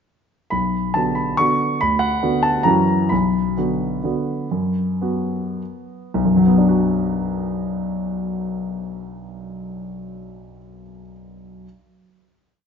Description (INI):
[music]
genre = classical, piano waltz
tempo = 104-147 BPM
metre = 3/4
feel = rubato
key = B minor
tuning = A4 = 441 Hz
[part]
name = warm concert grand piano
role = solo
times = 0.5-11.7 s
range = B1 to C#6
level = -18 LUFS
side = equal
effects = none
[sound]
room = moderate recital hall reverb, RT60 1.6 s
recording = nothing above 7.5 kHz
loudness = -18 LUFS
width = side -6 dB against mid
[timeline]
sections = 0.5-6.2 A section; 6.2-9.5 final chord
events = slowing down 2.4-6.2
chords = 0.5 Bm; 1.8 Bm/D; 2.7 F#7; 3.1 Bm